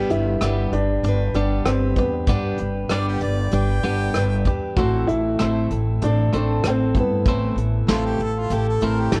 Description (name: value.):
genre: folk rock and heartland rock.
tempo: 96 BPM.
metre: 4/4.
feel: straight.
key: G major.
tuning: A4 = 440 Hz.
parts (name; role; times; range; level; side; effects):
dark baby grand piano; melody; 0.0-9.2 s; B3 to G4; -28 LUFS; equal; tape echo.
picked old ladder-braced acoustic guitar; accompaniment; 0.0-9.2 s; A2 to B4; -30 LUFS; equal; none.
twelve-string electric guitar; riff; 0.0-9.2 s; A2 to D4; -30 LUFS; equal; none.
upright bass; bass; 0.0-9.2 s; G1 to G2; -25 LUFS; equal; none.
soft brush drum kit; drums; 0.1-9.2 s; hi-hat, kick drum, rim click, snare drum; -27 LUFS; equal; none.
clear harmonica; second line; 2.9-9.2 s; F4 to G5; -31 LUFS; equal; none.
room: moderate spring reverb, RT60 2.6 s.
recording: cassette tape.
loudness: -21 LUFS.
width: mono.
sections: 0.0-9.2 A section.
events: none.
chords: 0.0 G; 4.8 Am.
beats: 0.42 1.04 1.66 | 2.29 2.91 3.53 4.15 | 4.78 5.40 6.02 6.64 | 7.26 7.89 8.51 9.13.